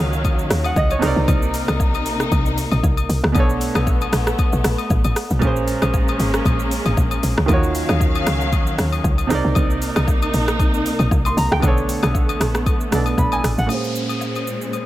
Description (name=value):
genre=amapiano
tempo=116 BPM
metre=4/4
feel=swing 55% on 16ths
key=unclear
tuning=A4 = 436 Hz
part: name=clear baby grand piano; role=accompaniment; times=0.0-14.9 s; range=Bb2 to C6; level=-24 LUFS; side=right 3 dB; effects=low-pass filter
part: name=warm studio string section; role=sustained chords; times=0.0-14.9 s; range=Bb2 to F5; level=-25 LUFS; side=left 1 dB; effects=low-pass filter
part: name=woody log drum bass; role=bass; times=0.0-13.7 s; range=Ab1 to Eb2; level=-21 LUFS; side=equal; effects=none
part: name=downlifter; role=sound effects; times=0.0-1.3, 13.7-14.9 s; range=none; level=-32 LUFS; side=equal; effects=none
part: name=afro-pop drum kit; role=drums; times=0.1-14.9 s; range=hi-hat, kick drum, rim click, shaker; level=-21 LUFS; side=equal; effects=none
part: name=agogo bells and woodblock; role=percussion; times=0.2-14.9 s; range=none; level=-29 LUFS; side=left 7 dB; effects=none
room=digital ambience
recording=none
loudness=-16 LUFS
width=side -15 dB against mid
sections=0.0-13.7 A section; 13.7-14.9 B section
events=drop 0.0-13.7; filter sweep 13.7-14.9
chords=0.0 Ebm9; 1.0 Cm9; 3.4 Bm9; 5.4 Bbm9; 7.5 Ebm9; 9.3 Cm9; 11.6 Bm9; 13.7 Bbm9